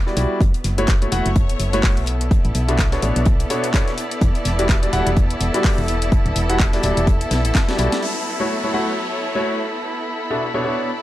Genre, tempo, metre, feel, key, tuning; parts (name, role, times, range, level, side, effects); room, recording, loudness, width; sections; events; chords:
piano house; 126 BPM; 4/4; swing 57% on 16ths; E dorian; A4 = 440 Hz
clear studio string section; texture; 0.0-11.0 s; F#3 to D5; -25 LUFS; equal; sidechain pumping
bright concert grand piano; riff; 0.1-10.9 s; B2 to F#5; -23 LUFS; left 1 dB; sidechain pumping, digital delay
modern studio drum kit; drums; 0.1-7.9 s; hi-hat, snare drum; -36 LUFS; left 2 dB
solid FM bass; bass; 0.2-7.9 s; D1 to B1; -21 LUFS; equal; sidechain pumping
house drum kit; drums; 0.2-8.1 s; crash cymbal, handclaps, hi-hat, snare drum; -26 LUFS; left 1 dB
electronic kick drum; drums; 0.4-7.7 s; -17 LUFS; equal
warm chamber violin section; sustained chords; 8.0-11.0 s; B5; -31 LUFS; left 1 dB; sidechain pumping, low-pass filter
downlifter; sound effects; 8.0-11.0 s; -31 LUFS; equal
light reverb, small room reverb; dark, warm production; -17 LUFS; side -14 dB against mid
0.0-8.0 A section; 8.0-11.0 B section
drum fill 7.3-8.0; band accent 7.9
0.4 F#m7; 2.1 Bm9; 4.2 Em9; 8.0 F#m7; 9.7 Bm9